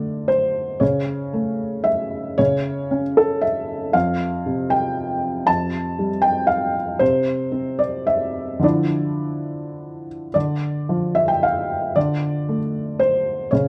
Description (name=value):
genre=neoclassical minimalist piano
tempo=103-119 BPM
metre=3/4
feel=rubato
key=D minor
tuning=A4 = 442 Hz
part: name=felt-muted upright piano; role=solo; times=0.0-13.7 s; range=F2 to A5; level=-21 LUFS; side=equal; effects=none
room=moderate studio reverb, RT60 0.8 s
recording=dark, warm production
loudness=-21 LUFS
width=mono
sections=0.0-10.3 A section; 10.3-13.7 A section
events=none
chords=0.0 D5; 0.8 A/C#; 3.9 Fsus2; 7.0 N.C.; 8.6 Dmadd9; 10.3 Dm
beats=0.29 | 0.81 1.34 1.87 | 2.39 2.91 3.42 | 3.94 4.46 4.96 | 5.47 5.99 6.50 | 7.01 7.53 8.07 | 8.63 9.21 9.78 | 10.35 10.89 11.43 | 11.96 12.48 13.00 | 13.51